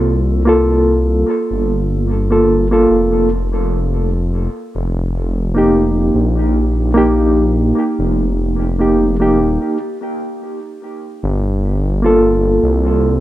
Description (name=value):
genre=trip hop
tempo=74 BPM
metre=4/4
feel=swing 56% on 16ths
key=G minor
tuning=A4 = 439 Hz
part: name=mellow reed electric piano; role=accompaniment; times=0.0-13.2 s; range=Bb3 to A4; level=-15 LUFS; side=equal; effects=tremolo, tape echo
part: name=dark detuned saw bass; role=bass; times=0.0-13.2 s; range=Eb1 to C2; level=-16 LUFS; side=equal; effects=none
room=light reverb, digital ambience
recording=echo-heavy mix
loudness=-12 LUFS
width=side -14 dB against mid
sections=0.0-13.2 A section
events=none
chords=0.0 Gm7; 3.3 F9sus4; 9.8 Gm7